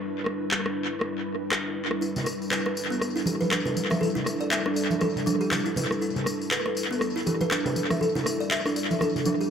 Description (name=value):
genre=afro house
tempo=120 BPM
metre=4/4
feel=swing 58% on 16ths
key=E minor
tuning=A4 = 440 Hz
part: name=ethereal airy pad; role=sustained chords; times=0.0-9.5 s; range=G3 to B4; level=-30 LUFS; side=left 1 dB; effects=ensemble chorus, built-in reverb
part: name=electronic rim click and handclaps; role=drums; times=0.3-9.1 s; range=none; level=-29 LUFS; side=left 1 dB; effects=tape echo
part: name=kalimba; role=arpeggios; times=2.0-9.5 s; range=B3 to E5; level=-29 LUFS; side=right 1 dB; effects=tape echo
part: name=tambourine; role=percussion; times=2.0-9.5 s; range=none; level=-37 LUFS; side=left 4 dB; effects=tape echo
part: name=congas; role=percussion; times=2.2-9.4 s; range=none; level=-30 LUFS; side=right 2 dB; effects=tape echo
room=wet spring reverb, RT60 1.2 s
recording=echo-heavy mix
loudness=-24 LUFS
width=side -7 dB against mid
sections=0.0-9.5 A section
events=none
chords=0.0 Em7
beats=| 0.01 0.51 1.01 1.51 | 2.01 2.51 3.01 3.51 | 4.01 4.51 5.01 5.51 | 6.01 6.51 7.01 7.51 | 8.01 8.51 9.01